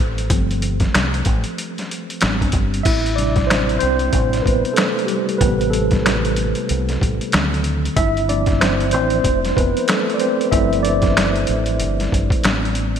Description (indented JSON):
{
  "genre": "R&B, neo-soul",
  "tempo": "94 BPM",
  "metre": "4/4",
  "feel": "swing 61% on 16ths",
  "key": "A minor",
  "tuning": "A4 = 435 Hz",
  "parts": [
    { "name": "mellow tine electric piano", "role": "accompaniment", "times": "0.0-13.0 s", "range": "C3 to E5", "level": "-20 LUFS", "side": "right 1 dB", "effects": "medium stereo tremolo" },
    { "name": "deep dub fingered electric bass", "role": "bass", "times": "0.0-13.0 s", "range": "F1 to D2", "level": "-22 LUFS", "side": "equal", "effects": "none" },
    { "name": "boom bap sampler-style drum kit", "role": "drums", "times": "0.2-13.0 s", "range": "crash cymbal, finger snaps, hi-hat, kick drum, snare drum", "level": "-20 LUFS", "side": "equal", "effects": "overdrive, gated reverb" }
  ],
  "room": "moderate lush hall reverb, RT60 2.8 s",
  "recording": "bright 1980s-style digital production",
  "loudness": "-16 LUFS",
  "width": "side -8 dB against mid",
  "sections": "0.0-2.9 A section; 2.9-13.0 B section",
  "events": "tine electric piano solo 0.0-2.9, 2.9-13.0",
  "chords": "0.0 G9sus4; 2.2 Am11; 2.9 Am9; 7.3 D7b9; 8.0 G9sus4; 12.4 Am11",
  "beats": "| 0.30 0.94 1.58 2.22 | 2.86 3.49 4.13 4.77 | 5.41 6.05 6.69 7.32 | 7.96 8.60 9.24 9.88 | 10.52 11.15 11.79 12.43"
}